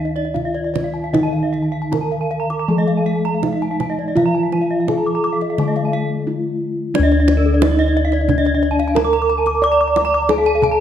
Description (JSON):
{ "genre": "Balinese gamelan", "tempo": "76-90 BPM", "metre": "4/4", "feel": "straight", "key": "D pelog", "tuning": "A4 = 438 Hz", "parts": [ { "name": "gamelan-type bronze metallophone", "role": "melody", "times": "0.0-10.8 s", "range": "D4 to D5", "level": "-20 LUFS", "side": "equal", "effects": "none" }, { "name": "gamelan-type bronze metallophone", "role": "arpeggios", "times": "0.0-10.8 s", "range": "Bb4-20c to D6", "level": "-26 LUFS", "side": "right 5 dB", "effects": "none" }, { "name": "gamelan-type bossed gongs", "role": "bass", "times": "0.0-10.8 s", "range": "D2 to D5", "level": "-20 LUFS", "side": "left 1 dB", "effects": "none" }, { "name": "gamelan-type bronze metallophone", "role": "arpeggios", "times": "0.1-10.7 s", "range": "A4-30c to D6", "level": "-23 LUFS", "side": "left 4 dB", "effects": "none" }, { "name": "kendang", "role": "percussion", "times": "0.2-10.8 s", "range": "none", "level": "-26 LUFS", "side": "right 6 dB", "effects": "none" }, { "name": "gamelan-type bronze metallophone", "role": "accompaniment", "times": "1.1-7.0 s", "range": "Eb3+20c to A3-30c", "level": "-25 LUFS", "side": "right 2 dB", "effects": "none" } ], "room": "moderate recital hall reverb, RT60 1.6 s", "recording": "none", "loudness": "-15 LUFS", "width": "side -10 dB against mid", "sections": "0.0-6.9 A section; 6.9-10.8 B section", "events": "break 5.9-6.9", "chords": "none" }